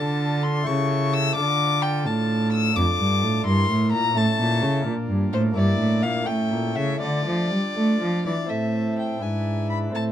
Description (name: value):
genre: classical, baroque-style sonata movement with continuo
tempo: 85 BPM (dotted quarters)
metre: 6/8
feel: rubato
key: D minor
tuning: A4 = 440 Hz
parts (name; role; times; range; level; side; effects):
- warm violin; melody; 0.0-10.0 s; C5 to E6; -26 LUFS; left 5 dB; none
- chamber organ, principal chorus; accompaniment; 0.0-10.1 s; F2 to B4; -27 LUFS; equal; none
- dark cello; bass; 0.0-10.1 s; F2 to A3; -23 LUFS; right 1 dB; none
room: light reverb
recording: dark, warm production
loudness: -20 LUFS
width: side -10 dB against mid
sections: 0.0-8.5 A section; 8.5-10.1 A section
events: none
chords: 0.0 Dm; 0.7 A7/C#; 1.4 Dm; 2.8 Dm/F; 3.5 Em7b5/G; 4.2 A; 4.9 Bb; 5.6 Em7b5/G; 6.3 A7; 7.0 Dm; 8.5 Am; 9.2 E7/G#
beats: 0.68 | 1.38 2.07 | 2.76 3.46 | 4.16 4.86 | 5.56 6.28 | 7.02 7.77 | 8.51 9.23 | 9.95